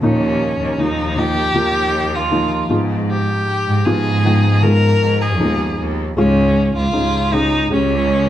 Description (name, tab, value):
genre	pop ballad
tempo	78 BPM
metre	4/4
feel	straight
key	Eb mixolydian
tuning	A4 = 438 Hz
part	warm violin	melody	0.0-8.3 s	Db4 to Bb4	-19 LUFS	equal	none
part	felt-muted upright piano	accompaniment	0.0-8.3 s	Ab2 to G5	-19 LUFS	equal	none
part	clear symphonic cello section	bass	0.0-8.3 s	Db2 to Ab2	-18 LUFS	equal	none
room	moderate large studio reverb, RT60 1.0 s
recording	band playing live in one room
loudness	-14 LUFS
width	side -12 dB against mid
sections	0.0-8.3 A section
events	none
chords	0.0 Ebsus2; 2.7 Abm6; 6.2 Db